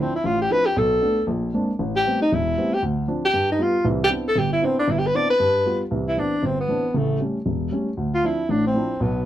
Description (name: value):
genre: jazz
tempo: 233 BPM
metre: 4/4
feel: swing 60% on 8ths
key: C major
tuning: A4 = 440 Hz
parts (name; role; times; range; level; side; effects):
- breathy tenor saxophone; melody; 0.0-9.3 s; A3 to D5; -20 LUFS; equal; none
- dark baby grand piano; accompaniment; 0.0-9.2 s; E1 to F4; -23 LUFS; equal; none
room: light reverb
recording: dry, close 1970s-style studio recording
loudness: -19 LUFS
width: side -12 dB against mid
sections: 0.0-5.9 A section; 5.9-9.3 B section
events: tenor saxophone solo 0.0-5.9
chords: 0.0 Dm9; 0.7 Bm7; 1.3 Bb9; 1.8 Am9; 2.8 Dm7; 3.3 G7; 3.8 Cmaj9; 5.4 G7; 5.9 Cmaj9; 6.9 A7; 8.0 Dm9